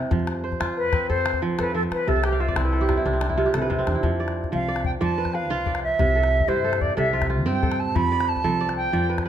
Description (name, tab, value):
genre	west african traditional, West African string and xylophone music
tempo	122 BPM (dotted quarters)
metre	12/8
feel	straight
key	F lydian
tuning	A4 = 436 Hz
part	kora	arpeggios	0.0-9.3 s	C3 to A5	-25 LUFS	right 3 dB	none
part	upright bass	bass	0.1-9.3 s	C2 to F3	-26 LUFS	left 1 dB	none
part	calabash	percussion	0.1-9.3 s	none	-30 LUFS	left 4 dB	none
part	wooden flute	melody	0.8-9.1 s	E4 to B5	-24 LUFS	right 1 dB	none
room	moderate recital hall reverb, RT60 1.8 s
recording	close, detailed microphones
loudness	-20 LUFS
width	side -10 dB against mid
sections	0.0-4.0 A section; 4.0-9.3 B section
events	kora fill 2.2-4.0; flute solo 4.0-9.3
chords	0.1 F; 2.1 C; 7.9 F